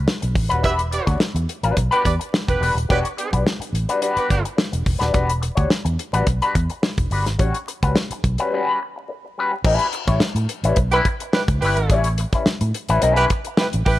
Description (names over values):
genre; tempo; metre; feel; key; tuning
funk; 107 BPM; 4/4; straight; unclear; A4 = 440 Hz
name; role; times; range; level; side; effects
vintage muted fingered electric bass; bass; 0.0-14.0 s; D#1 to A2; -21 LUFS; equal; none
electric guitar with an envelope filter; accompaniment; 0.1-13.8 s; G3 to C#5; -22 LUFS; left 3 dB; wah, vibrato effect
damped 70s drum kit; drums; 0.1-14.0 s; crash cymbal, hi-hat, kick drum, snare drum; -21 LUFS; equal; none
clear horn section; second line; 0.6-4.4, 10.9-14.0 s; B3 to E5; -23 LUFS; right 3 dB; none
room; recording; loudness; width
studio reverb; vinyl crackle; -18 LUFS; side -15 dB against mid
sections
0.0-9.6 A section; 9.6-14.0 B section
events
break 8.5-9.6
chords
0.0 A13; 0.6 Em9; 7.4 A13 (rootless); 9.6 A9